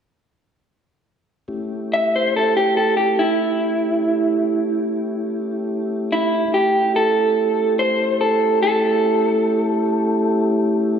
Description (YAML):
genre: blues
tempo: 48 BPM (dotted quarters)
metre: 12/8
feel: straight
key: A mixolydian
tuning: A4 = 440 Hz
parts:
  - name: mellow tonewheel organ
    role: sustained chords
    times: 1.5-11.0 s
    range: A3 to G4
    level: -22 LUFS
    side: equal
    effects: slow rotary speaker
  - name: electric guitar through a small old amp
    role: melody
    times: 1.9-11.0 s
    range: E4 to E5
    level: -18 LUFS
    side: right 1 dB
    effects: none
room: wet concert hall reverb, RT60 2.1 s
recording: recorded in a church or concert hall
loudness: -16 LUFS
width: side -7 dB against mid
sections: 1.5-11.0 A section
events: none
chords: 1.5 A7